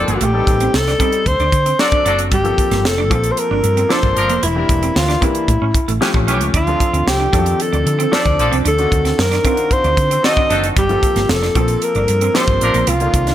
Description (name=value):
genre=polished 1980s jazz-funk pop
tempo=114 BPM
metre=4/4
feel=straight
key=unclear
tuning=A4 = 440 Hz
part: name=mellow alto saxophone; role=melody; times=0.0-13.3 s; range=E4 to Eb5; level=-17 LUFS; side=equal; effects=none
part: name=clear horn section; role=second line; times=0.0-12.8 s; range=Eb3 to Bb4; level=-23 LUFS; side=equal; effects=ping-pong delay
part: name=warm concert grand piano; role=accompaniment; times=0.0-13.3 s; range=D3 to A4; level=-22 LUFS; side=left 2 dB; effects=wide subtle chorus
part: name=woody fretless electric bass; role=bass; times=0.0-13.3 s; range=E1 to D3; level=-19 LUFS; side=equal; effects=none
part: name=clean electric guitar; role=riff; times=0.1-13.3 s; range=G3 to E4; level=-25 LUFS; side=right 7 dB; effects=lush chorus
part: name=tight funk drum kit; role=drums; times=0.1-13.3 s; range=hi-hat, kick drum, snare drum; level=-19 LUFS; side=equal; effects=none
room=light reverb, studio ambience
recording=none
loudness=-13 LUFS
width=side -12 dB against mid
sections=0.0-13.3 A section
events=none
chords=0.2 Am7b5; 1.3 D7; 2.3 Gm11; 4.4 Em7b5; 5.5 A7b13; 6.5 Dm7; 8.7 D7b9; 10.8 Gm11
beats=| 0.21 0.74 1.26 1.79 | 2.32 2.85 3.38 3.90 | 4.43 4.96 5.49 6.01 | 6.54 7.07 7.60 8.12 | 8.65 9.18 9.71 10.23 | 10.76 11.29 11.82 12.35 | 12.87